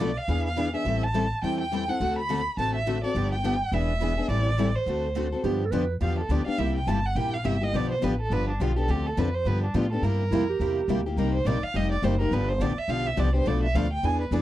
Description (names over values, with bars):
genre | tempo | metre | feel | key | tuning
acoustic string swing (jazz manouche) | 209 BPM | 4/4 | swing 58% on 8ths | G mixolydian | A4 = 440 Hz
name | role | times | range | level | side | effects
rich violin | melody | 0.0-14.4 s | D4 to B5 | -30 LUFS | right 2 dB | none
picked steel-string acoustic guitar | accompaniment | 0.0-14.4 s | B2 to A4 | -29 LUFS | left 5 dB | none
picked steel-string acoustic guitar | accompaniment | 0.0-14.4 s | B2 to B4 | -34 LUFS | right 9 dB | none
upright bass | bass | 0.0-14.4 s | E1 to A2 | -27 LUFS | equal | none
growling clarinet | second line | 5.4-5.9, 10.3-11.1 s | E4 to B4 | -28 LUFS | right 7 dB | none
room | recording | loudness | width
little or no reverb | dry, close 1970s-style studio recording | -23 LUFS | side -14 dB against mid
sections
0.0-5.4 A section; 5.4-14.4 B section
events
violin solo 5.4-14.4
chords
0.3 E7b9; 0.9 Am7; 2.0 D7; 3.2 G7; 3.7 E7; 4.3 Am7; 4.9 D7; 5.4 G7; 6.6 C7; 7.7 G7; 8.9 Dm7; 9.5 G7; 10.0 C7; 11.2 Cm7; 12.3 G7; 13.5 Bm7b5